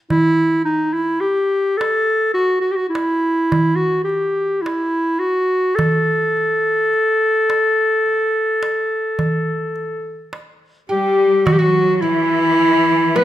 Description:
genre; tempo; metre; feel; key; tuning
Arabic maqam ensemble; 106 BPM (eighths); 10/8; straight; unclear; A4 = 440 Hz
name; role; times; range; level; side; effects
warm clarinet; melody; 0.1-13.2 s; D#4 to B4; -16 LUFS; equal; none
darbuka; percussion; 0.1-13.2 s; none; -21 LUFS; right 2 dB; none
oud; second line; 10.9-13.2 s; E4 to B4; -24 LUFS; right 1 dB; none
rich symphonic cello section; second line; 10.9-13.2 s; E3 to B3; -20 LUFS; left 1 dB; none
room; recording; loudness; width
moderate recital hall reverb, RT60 1.4 s; minimal, uncompressed stereo recording; -15 LUFS; side -12 dB against mid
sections
0.0-11.5 A section; 11.5-13.2 B section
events
none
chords
none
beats
| 0.11 0.67 1.24 1.81 2.38 2.95 3.52 4.08 4.65 5.22 | 5.79 6.36 6.92 7.49 8.06 8.63 9.20 9.76 10.33 10.90 | 11.47 12.04 12.60 13.17

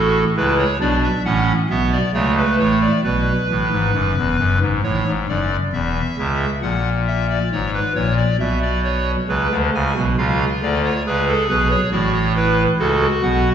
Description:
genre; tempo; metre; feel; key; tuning
classical, baroque-style 3-part fugue for pipe organ; 68 BPM; 4/4; straight; unclear; A4 = 439 Hz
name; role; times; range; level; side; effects
pipe organ, clarinet reed; solo; 0.0-13.5 s; E1 to G#5; -16 LUFS; equal; none
room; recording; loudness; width
wet recital hall reverb, RT60 1.4 s; heard from further back in the room, nothing above 7.8 kHz; -16 LUFS; side -8 dB against mid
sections
0.0-3.0 A section; 3.0-13.5 B section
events
none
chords
0.0 A; 3.0 E; 4.8 A; 6.6 F#/A#; 8.4 Bm; 10.2 C#7; 11.9 F#m/A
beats
0.36 1.25 2.14 | 3.04 3.94 4.84 5.74 | 6.63 7.52 8.40 9.29 | 10.18 11.06 11.93 12.80

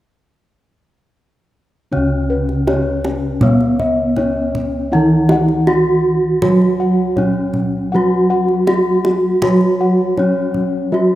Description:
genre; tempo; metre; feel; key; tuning
Javanese gamelan; 80 BPM; 4/4; straight; unclear; A4 = 440 Hz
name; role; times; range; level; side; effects
gamelan-type bronze metallophone; melody; 1.9-11.2 s; B3-25c to F#4; -17 LUFS; equal; none
gamelan-type bronze metallophone; accompaniment; 1.9-11.2 s; C#3 to B3-25c; -19 LUFS; equal; none
gamelan-type bossed gongs; arpeggios; 1.9-11.2 s; B4-25c to F#5; -22 LUFS; left 3 dB; none
gamelan-type bossed gongs; bass; 1.9-11.2 s; C#2 to F#4; -21 LUFS; right 1 dB; none
kendang; percussion; 2.5-10.7 s; none; -21 LUFS; right 1 dB; none
room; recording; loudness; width
moderate lush hall reverb, RT60 3.0 s; rough home demo mix; -13 LUFS; side -14 dB against mid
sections
1.9-11.2 A section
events
none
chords
none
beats
| 1.93 2.68 3.43 4.18 | 4.93 5.68 6.43 7.18 | 7.93 8.68 9.43 10.18 | 10.93

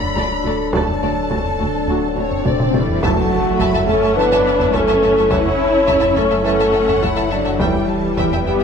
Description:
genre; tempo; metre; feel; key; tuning
cinematic, hybrid orchestral and electronic film score; 105 BPM; 4/4; straight; F# phrygian; A4 = 440 Hz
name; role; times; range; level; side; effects
warm symphonic violin section; melody; 0.0-8.6 s; C#5 to B5; -28 LUFS; left 2 dB; none
warbly tape-like pad; sustained chords; 0.0-8.6 s; F#3 to D5; -24 LUFS; left 2 dB; chorus, built-in reverb
warm sub bass; bass; 0.0-8.6 s; D1 to F#1; -29 LUFS; equal; none
solo taiko drums; drums; 0.0-8.6 s; none; -23 LUFS; equal; none
felt-muted upright piano; texture; 0.0-8.6 s; A4 to B5; -31 LUFS; equal; none
warm chamber violin section; second line; 0.2-8.6 s; A4 to A5; -26 LUFS; equal; none
warm symphonic viola section; accompaniment; 0.2-8.6 s; F#3 to F#4; -23 LUFS; equal; none
rich symphonic double bass section; bass; 0.2-8.6 s; D2 to F#2; -28 LUFS; right 4 dB; none
warm symphonic cello section; bass; 0.2-8.6 s; D2 to C#4; -26 LUFS; right 4 dB; none
mellow French horn section; sustained chords; 0.7-8.6 s; A3 to C#5; -18 LUFS; left 2 dB; none
warm trombone section; sustained chords; 0.7-7.8 s; D3 to A3; -28 LUFS; right 3 dB; none
swell and impact; sound effects; 1.4-5.3 s; none; -26 LUFS; left 3 dB; none
room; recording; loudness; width
wet scoring stage reverb, RT60 1.8 s; none; -14 LUFS; side -6 dB against mid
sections
0.0-3.0 A section; 3.0-8.6 B section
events
swell 1.4-3.0; drum fill 2.4-3.0; impact 3.0-5.3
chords
0.0 D; 3.0 F#m7; 7.6 Em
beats
0.16 | 0.73 1.31 1.88 2.45 | 3.02 3.59 4.16 4.73 | 5.31 5.88 6.45 7.02 | 7.59 8.16

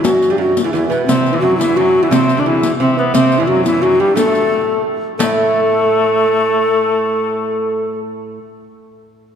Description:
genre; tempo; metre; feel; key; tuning
medieval dance; 175 BPM; 3/4; straight; A dorian; A4 = 440 Hz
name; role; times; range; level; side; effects
mellow hollow tenor recorder; melody; 0.0-8.0 s; C4 to B4; -15 LUFS; equal; none
lute; second line; 0.0-8.4 s; D2 to C3; -19 LUFS; right 4 dB; none
riq; percussion; 0.0-5.4 s; none; -22 LUFS; left 6 dB; none
mellow cor anglais; second line; 1.1-8.0 s; E3 to D4; -20 LUFS; left 4 dB; none
room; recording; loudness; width
wet church reverb, RT60 3.1 s; dark, warm production; -12 LUFS; side -8 dB against mid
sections
0.0-5.2 A section; 5.2-7.2 B section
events
none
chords
none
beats
| 0.05 0.40 0.74 | 1.09 1.43 1.78 | 2.12 2.46 2.81 | 3.15 3.49 3.83 | 4.18 4.52 4.86 | 5.20 5.54 5.88 | 6.22 6.56 6.90

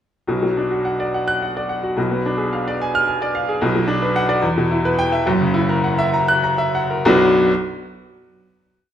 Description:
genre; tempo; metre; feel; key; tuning
classical, virtuoso piano study; 63-74 BPM (dotted quarters); 6/8; rubato; B minor; A4 = 444 Hz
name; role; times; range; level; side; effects
bright baby grand piano; solo; 0.3-7.5 s; F#1 to F#6; -16 LUFS; equal; none
room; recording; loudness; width
moderate recital hall reverb, RT60 1.4 s; none; -16 LUFS; side -10 dB against mid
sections
0.3-7.1 A section; 7.1-8.9 final chord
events
slowing down 2.8-7.1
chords
0.3 Bm; 2.0 Bdim7; 3.6 Bm; 4.4 Em; 5.3 F#7; 7.1 Bm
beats
| 0.29 1.13 | 1.97 2.80 | 3.62 4.43 | 5.27 6.14 | 7.06

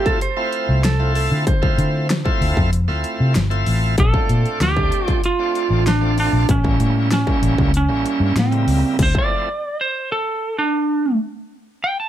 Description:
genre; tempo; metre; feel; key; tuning
straight-eighth soul blues; 96 BPM; 4/4; straight; D minor; A4 = 442 Hz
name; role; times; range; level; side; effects
lightly driven lead guitar; melody; 0.0-0.2, 4.0-12.1 s; C4 to A5; -20 LUFS; right 3 dB; none
clean lap steel guitar; second line; 0.0-2.7 s; A4 to C5; -24 LUFS; right 5 dB; analog delay
overdriven tonewheel organ; accompaniment; 0.0-9.5 s; C#3 to G4; -25 LUFS; equal; slow rotary speaker
dubstep drum kit; drums; 0.1-9.3 s; crash cymbal, hi-hat, kick drum, snare drum; -21 LUFS; left 1 dB; distortion
vintage muted fingered electric bass; bass; 0.7-9.1 s; G1 to D3; -18 LUFS; left 1 dB; none
room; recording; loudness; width
light reverb; none; -16 LUFS; side -11 dB against mid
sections
0.0-12.1 A section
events
stop 9.0-12.1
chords
0.0 Dm7; 4.0 Bbmaj7; 6.5 A7b9; 9.0 Dm7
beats
0.22 0.84 | 1.47 2.10 2.73 3.35 | 3.98 4.61 5.23 5.86 | 6.49 7.11 7.74 8.37 | 8.99 9.62 10.24 10.87 | 11.49

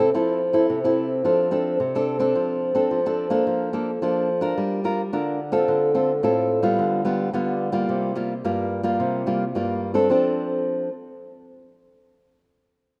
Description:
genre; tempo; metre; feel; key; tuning
samba; 108 BPM; 4/4; straight; F major; A4 = 440 Hz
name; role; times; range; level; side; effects
nylon-string guitar; solo; 0.0-10.9 s; G2 to Bb4; -23 LUFS; equal; none
room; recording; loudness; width
wet lush hall reverb, RT60 2.5 s; rough home demo mix; -23 LUFS; mono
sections
0.0-1.2 A section; 1.2-10.1 B section; 10.1-12.3 C section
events
none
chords
0.0 Fmaj7; 1.2 F6; 2.4 Dm7/F; 3.5 Bbmaj7/F; 4.6 Gm7; 5.7 Dm7; 6.8 G7/D; 7.9 C7sus4; 10.1 F6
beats
0.14 0.69 | 1.25 1.80 2.35 2.91 | 3.46 4.02 4.57 5.12 | 5.68 6.23 6.78 7.34 | 7.89 8.44 9.00 9.55 | 10.11 10.66

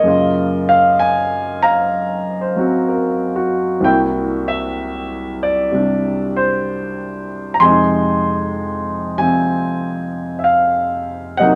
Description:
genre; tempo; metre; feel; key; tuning
solo jazz; 64 BPM; 4/4; swing 67% on 8ths; unclear; A4 = 440 Hz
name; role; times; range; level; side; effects
warm grand piano; solo; 0.0-11.6 s; C2 to C6; -17 LUFS; equal; none
room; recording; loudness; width
moderate small room reverb, RT60 0.6 s; none; -17 LUFS; mono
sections
0.0-11.6 A section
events
none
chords
0.1 Gbmaj7; 3.8 C7; 7.6 Fm7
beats
| 0.06 1.00 1.94 2.89 | 3.83 4.78 5.72 6.66 | 7.61 8.55 9.50 10.44 | 11.39

